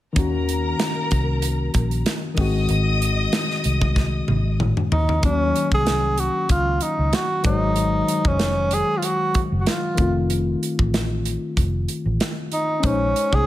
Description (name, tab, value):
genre	lush 1970s-style soul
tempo	95 BPM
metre	4/4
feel	swing 54% on 16ths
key	Eb dorian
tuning	A4 = 443 Hz
part	barky tine electric piano	accompaniment	0.1-13.5 s	Eb3 to C5	-25 LUFS	left 4 dB	overdrive
part	dark studio string section	second line	0.2-4.6 s	Bb4 to Eb6	-28 LUFS	left 2 dB	none
part	vintage muted fingered electric bass	bass	0.2-13.5 s	F1 to Eb2	-23 LUFS	equal	none
part	modern studio drum kit	drums	0.2-13.5 s	hi-hat, kick drum, snare drum, toms	-23 LUFS	equal	none
part	breathy tenor saxophone	melody	4.9-13.5 s	Db4 to Ab4	-22 LUFS	right 1 dB	none
room	light reverb, studio ambience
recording	none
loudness	-19 LUFS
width	side -14 dB against mid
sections	0.2-5.2 A section; 5.2-13.5 B section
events	drum fill 4.0-5.2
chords	0.2 Ebm7; 2.4 Ab7; 4.9 N.C.; 5.2 Ebm7; 7.4 Ab7; 10.0 F7; 12.8 Bbm11